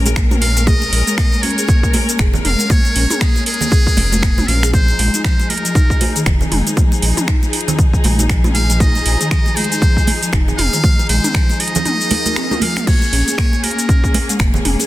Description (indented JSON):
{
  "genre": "afro house",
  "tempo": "118 BPM",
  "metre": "4/4",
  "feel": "swing 58% on 16ths",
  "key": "Bb minor",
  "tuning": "A4 = 439 Hz",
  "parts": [
    { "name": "dark symphonic string section", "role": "sustained chords", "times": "0.0-14.9 s", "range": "F3 to Bb4", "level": "-26 LUFS", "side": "left 3 dB", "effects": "sidechain pumping" },
    { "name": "folk marimba with soft mallets", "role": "arpeggios", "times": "0.0-14.9 s", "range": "Eb3 to Ab4", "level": "-22 LUFS", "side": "left 1 dB", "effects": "sidechain pumping, digital delay" },
    { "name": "round analog bass", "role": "bass", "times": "0.0-14.8 s", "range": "F1 to Bb1", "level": "-17 LUFS", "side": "equal", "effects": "sidechain pumping" },
    { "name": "house drum kit", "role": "drums", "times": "0.1-14.9 s", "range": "cabasa, crash cymbal, finger snaps, hi-hat, toms", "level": "-20 LUFS", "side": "equal", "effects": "studio reverb, soft clipping on snare" },
    { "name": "congas", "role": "percussion", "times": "0.1-14.9 s", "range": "none", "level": "-24 LUFS", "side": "right 3 dB", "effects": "none" },
    { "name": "electronic kick drum", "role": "drums", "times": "0.2-14.5 s", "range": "none", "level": "-14 LUFS", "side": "equal", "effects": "studio reverb" },
    { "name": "trumpet with metal mute", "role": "melody", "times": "0.4-14.4 s", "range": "Ab4 to F5", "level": "-21 LUFS", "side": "equal", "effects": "digital delay" },
    { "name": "swell", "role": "sound effects", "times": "12.0-12.9 s", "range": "none", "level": "-27 LUFS", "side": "right 1 dB", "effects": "none" }
  ],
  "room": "studio ambience",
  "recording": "dense, heavily limited modern master",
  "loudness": "-12 LUFS",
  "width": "side -16 dB against mid",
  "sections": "0.0-14.9 A section",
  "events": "swell 12.0-12.9; drum fill 12.4-12.9",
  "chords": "0.0 Bbm7; 4.7 Fm7; 12.9 Bbm7"
}